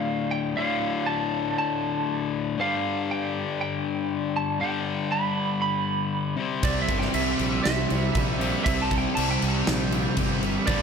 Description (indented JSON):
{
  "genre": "hard rock",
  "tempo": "119 BPM",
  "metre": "4/4",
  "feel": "straight",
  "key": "unclear",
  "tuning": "A4 = 439 Hz",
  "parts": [
    { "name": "lightly driven lead guitar", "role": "melody", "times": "0.0-10.8 s", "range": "D5 to B5", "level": "-29 LUFS", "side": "right 4 dB", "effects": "slapback echo" },
    { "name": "cranked stack guitar", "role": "riff", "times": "0.0-10.8 s", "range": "D2 to C4", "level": "-27 LUFS", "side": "left 6 dB", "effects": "overdrive" },
    { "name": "distorted electric guitar", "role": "riff", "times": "6.6-10.8 s", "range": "G2 to C4", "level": "-30 LUFS", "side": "right 13 dB", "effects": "distortion" },
    { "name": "fuzz fingered electric bass", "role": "bass", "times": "6.6-10.8 s", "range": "G1 to C2", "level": "-29 LUFS", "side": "right 1 dB", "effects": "overdrive" },
    { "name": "huge arena drum kit", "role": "drums", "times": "6.6-10.8 s", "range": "crash cymbal, kick drum, snare drum", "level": "-27 LUFS", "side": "equal", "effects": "none" }
  ],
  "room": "moderate lush hall reverb, RT60 2.0 s, studio ambience",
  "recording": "big arena sound",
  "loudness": "-23 LUFS",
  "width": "side -6 dB against mid",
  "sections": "0.0-10.8 A section",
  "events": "none",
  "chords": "0.0 Dm; 2.6 G; 6.4 C",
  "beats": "0.06 | 0.57 1.07 1.58 2.08 | 2.59 3.10 3.60 4.11 | 4.61 5.12 5.62 6.13 | 6.63 7.14 7.64 8.15 | 8.65 9.16 9.66 10.17 | 10.68"
}